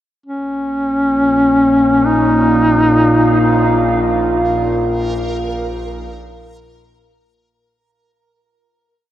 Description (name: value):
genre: dark ambient drone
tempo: free time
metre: none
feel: none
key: Bb minor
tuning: A4 = 440 Hz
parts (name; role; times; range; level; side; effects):
- dark analog pad; sustained chords; 0.2-7.5 s; Bb3 to F5; -18 LUFS; right 1 dB; lush chorus
- warm duduk; melody; 0.3-3.8 s; Db4 to Eb4; -14 LUFS; left 1 dB; tape echo
- analog drone; drone; 1.0-7.6 s; Bb1 to Bb2; -21 LUFS; left 1 dB; chorus
- backwards swelling texture; texture; 4.5-7.5 s; Bb4; -32 LUFS; right 3 dB; built-in reverb
room: wet huge ambient reverb, RT60 8.4 s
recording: worn, warbling old tape, cassette tape, warbly pitch drift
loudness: -12 LUFS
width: side -12 dB against mid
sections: 0.2-7.5 A section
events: fade-in on synth drone 0.2-7.5; fade-out 3.9-7.5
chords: 0.2 Bb5